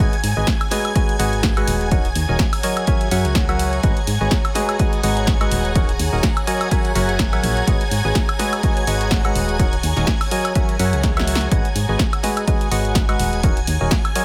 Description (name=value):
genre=piano house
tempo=125 BPM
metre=4/4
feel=swing 56% on 16ths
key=G# minor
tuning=A4 = 439 Hz
part: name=string machine, violins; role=sustained chords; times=0.0-14.2 s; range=G#5 to G#6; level=-31 LUFS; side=equal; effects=ensemble chorus, sidechain pumping
part: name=percussive organ stab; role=riff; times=0.0-14.2 s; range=D#3 to G#5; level=-25 LUFS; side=equal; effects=chorus, sidechain pumping, delay
part: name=solid FM bass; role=bass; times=0.0-13.9 s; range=D#1 to G#2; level=-24 LUFS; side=equal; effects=sidechain pumping
part: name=electronic kick drum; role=drums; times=0.0-14.0 s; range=none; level=-22 LUFS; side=equal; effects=none
part: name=punchy analog drum machine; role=drums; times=0.0-14.2 s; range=hi-hat, snare drum, woodblock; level=-27 LUFS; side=equal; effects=none
part: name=dark studio string section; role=texture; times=0.0-14.2 s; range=G#4 to A#5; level=-32 LUFS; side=equal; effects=sidechain pumping
part: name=swell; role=sound effects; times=11.1-11.5 s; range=none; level=-38 LUFS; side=equal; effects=none
room=little or no reverb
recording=none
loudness=-19 LUFS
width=mono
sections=0.0-14.2 A section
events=drum fill 11.0-11.5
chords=0.0 G#m7; 1.9 D#m7; 2.9 F#7; 3.8 G#m7; 5.8 D#m7; 6.7 F#7; 7.7 G#m7; 9.6 D#m7; 10.6 F#7; 11.5 G#m7; 13.4 D#m7